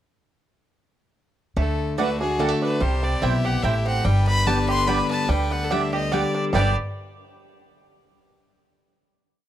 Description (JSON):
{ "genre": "bluegrass", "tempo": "145 BPM", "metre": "3/4", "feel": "swing 54% on 8ths", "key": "G major", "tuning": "A4 = 440 Hz", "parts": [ { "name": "clear fiddle", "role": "second line", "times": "1.6-6.7 s", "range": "F#4 to B4", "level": "-33 LUFS", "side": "left 7 dB", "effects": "none" }, { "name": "picked steel-string acoustic guitar", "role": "accompaniment", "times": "1.6-6.7 s", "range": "G2 to G4", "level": "-26 LUFS", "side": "left 3 dB", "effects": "none" }, { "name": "bluegrass banjo", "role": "arpeggios", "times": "1.6-6.8 s", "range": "G3 to G4", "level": "-28 LUFS", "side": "right 6 dB", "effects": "none" }, { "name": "upright bass", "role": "bass", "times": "1.6-6.7 s", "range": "G1 to D2", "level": "-24 LUFS", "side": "equal", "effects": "none" }, { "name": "clear fiddle", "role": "melody", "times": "2.0-6.7 s", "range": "Ab4 to C6", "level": "-26 LUFS", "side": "left 1 dB", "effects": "none" }, { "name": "mandolin", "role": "stabs", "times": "2.0-6.7 s", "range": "A3 to G5", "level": "-28 LUFS", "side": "right 9 dB", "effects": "none" } ], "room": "small room ambience", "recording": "dry, close 1970s-style studio recording", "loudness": "-20 LUFS", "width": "side -12 dB against mid", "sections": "1.6-6.5 A section; 6.5-7.8 final chord", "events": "none", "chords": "1.6 D; 2.8 C; 4.1 G" }